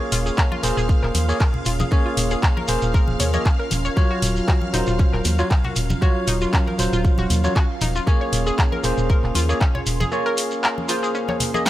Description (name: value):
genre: deep house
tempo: 117 BPM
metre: 4/4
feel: swing 54% on 16ths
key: unclear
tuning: A4 = 440 Hz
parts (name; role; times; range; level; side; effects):
- airy breathy pad; sustained chords; 0.0-11.7 s; Gb3 to C6; -34 LUFS; right 1 dB; chorus, sidechain pumping
- barky tine electric piano; stabs; 0.0-11.6 s; Gb3 to Eb5; -25 LUFS; equal; wide subtle chorus, sidechain pumping, tape echo
- deep dark ambient pad; texture; 0.1-11.7 s; Gb3 to Ab5; -34 LUFS; right 2 dB; chorus, built-in reverb, sidechain pumping
- string machine, violins; texture; 0.0-11.7 s; F5; -34 LUFS; equal; ensemble chorus
- analog pluck; arpeggios; 0.1-11.6 s; Db4 to Db5; -29 LUFS; left 2 dB; chorus, cassette tape, sidechain pumping, tape echo
- organ-like FM bass; bass; 0.1-10.0 s; Eb1 to Eb2; -22 LUFS; equal; tube saturation, sidechain pumping
- house drum kit; drums; 0.1-11.7 s; handclaps, hi-hat, snare drum; -25 LUFS; left 1 dB; none
- shekere; percussion; 0.1-11.7 s; none; -32 LUFS; right 2 dB; none
- electronic kick drum; drums; 0.4-9.7 s; none; -18 LUFS; equal; none
- congas; percussion; 0.5-11.6 s; none; -30 LUFS; left 1 dB; sidechain pumping on perc
room: little or no reverb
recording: none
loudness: -18 LUFS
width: side -14 dB against mid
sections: 0.0-11.7 A section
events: none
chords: 0.0 Bbm7/Eb; 4.0 Ebm9; 8.1 Bbm7/Eb